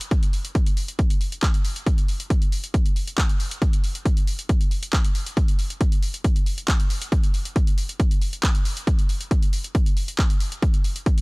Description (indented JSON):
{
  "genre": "techno",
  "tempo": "137 BPM",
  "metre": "4/4",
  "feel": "straight",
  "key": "none",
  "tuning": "none",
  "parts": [
    { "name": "techno drum kit", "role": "drums", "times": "0.0-11.2 s", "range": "handclaps, hi-hat", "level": "-30 LUFS", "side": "equal", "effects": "overdrive" },
    { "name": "electronic kick drum", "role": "drums", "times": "0.1-11.2 s", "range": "none", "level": "-20 LUFS", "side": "equal", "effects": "overdrive" }
  ],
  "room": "digital ambience",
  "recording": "dry, gritty hardware recording, transformer saturation",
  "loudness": "-20 LUFS",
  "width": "side -30 dB against mid",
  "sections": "0.0-11.2 A section",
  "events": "none",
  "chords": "none",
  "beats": "| 0.11 0.55 0.99 1.43 | 1.86 2.30 2.74 3.18 | 3.62 4.05 4.49 4.93 | 5.37 5.81 6.24 6.68 | 7.12 7.56 8.00 8.43 | 8.87 9.31 9.75 10.19 | 10.62 11.06"
}